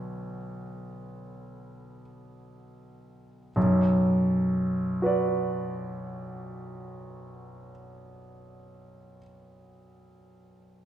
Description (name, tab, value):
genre	classical, romantic nocturne for solo piano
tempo	free time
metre	none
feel	none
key	B minor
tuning	A4 = 439 Hz
part	clear concert grand piano	solo	0.0-10.8 s	B1 to D5	-27 LUFS	equal	none
room	wet recital hall reverb, RT60 1.4 s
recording	recorded in a church or concert hall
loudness	-24 LUFS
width	side -11 dB against mid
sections	0.0-3.6 A section; 3.6-9.5 B section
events	slowing down 0.0-3.6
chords	0.0 Bm